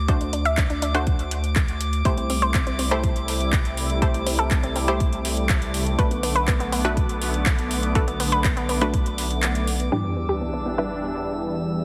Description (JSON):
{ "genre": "progressive house", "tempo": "122 BPM", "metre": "4/4", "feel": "straight", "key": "E minor", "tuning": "A4 = 440 Hz", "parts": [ { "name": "unison pluck", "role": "stabs", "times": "0.0-11.8 s", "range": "G3 to C5", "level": "-31 LUFS", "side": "equal", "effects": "sidechain pumping, dub echo" }, { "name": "round analog bass", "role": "bass", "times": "0.0-9.9 s", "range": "B1 to D2", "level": "-29 LUFS", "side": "equal", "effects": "sidechain pumping" }, { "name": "drifting glass-harmonics texture", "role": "texture", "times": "0.0-11.8 s", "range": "D6 to E6", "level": "-36 LUFS", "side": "equal", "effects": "chorus, built-in reverb, sidechain pumping" }, { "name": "analog pluck", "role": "arpeggios", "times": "0.1-11.8 s", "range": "B3 to F#5", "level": "-30 LUFS", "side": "equal", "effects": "chorus, sidechain pumping, dub echo" }, { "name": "deep house drum kit", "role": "drums", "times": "0.1-9.9 s", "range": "handclaps, hi-hat", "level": "-30 LUFS", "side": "equal", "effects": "overdrive" }, { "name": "electronic kick drum", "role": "drums", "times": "0.1-9.0 s", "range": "none", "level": "-24 LUFS", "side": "equal", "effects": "none" }, { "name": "filtered supersaw swell", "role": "sustained chords", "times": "2.0-11.8 s", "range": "E2 to E4", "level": "-31 LUFS", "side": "equal", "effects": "sidechain pumping" }, { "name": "sub drop", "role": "sound effects", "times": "9.9-11.8 s", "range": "none", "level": "-34 LUFS", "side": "equal", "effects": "none" } ], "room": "light reverb", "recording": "heavily compressed radio sound", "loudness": "-23 LUFS", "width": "mono", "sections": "0.0-9.9 A section; 9.9-11.8 B section", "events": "kick drops out 9.4-9.9; impact 9.9-11.8", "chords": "0.0 D7; 2.1 C6; 6.0 Bm7; 9.9 Em7" }